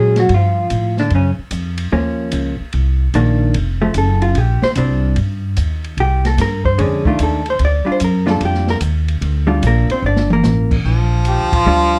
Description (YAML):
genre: jazz, small-group swing and bop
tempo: 148 BPM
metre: 4/4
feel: swing 67% on 8ths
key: Bb major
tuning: A4 = 437 Hz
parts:
  - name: vintage hollow-body jazz guitar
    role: accompaniment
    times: 0.0-12.0 s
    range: Db3 to D5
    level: -20 LUFS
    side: equal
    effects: none
  - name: upright bass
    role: bass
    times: 0.0-12.0 s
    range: F1 to Bb2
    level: -18 LUFS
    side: equal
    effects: none
  - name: open jazz drum kit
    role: drums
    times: 0.2-11.6 s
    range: crash cymbal, hi-hat, kick drum, ride cymbal, snare drum, toms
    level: -26 LUFS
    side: equal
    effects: none
  - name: bright baritone saxophone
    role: second line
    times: 10.9-12.0 s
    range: F3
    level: -20 LUFS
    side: equal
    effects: none
  - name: trumpet with cup mute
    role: melody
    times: 11.3-12.0 s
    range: F4 to G4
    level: -20 LUFS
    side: equal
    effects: none
room: light reverb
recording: dark, warm production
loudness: -16 LUFS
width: mono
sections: 0.0-10.8 A section; 10.8-12.0 B section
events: drum fill 10.0-10.4; band accent 11.4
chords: 0.3 Gsus2; 1.1 Gbmaj7; 2.7 Cm9; 3.5 F(b9); 4.4 Bb69; 5.2 Eb; 6.0 C5; 6.8 F6; 7.6 Bb6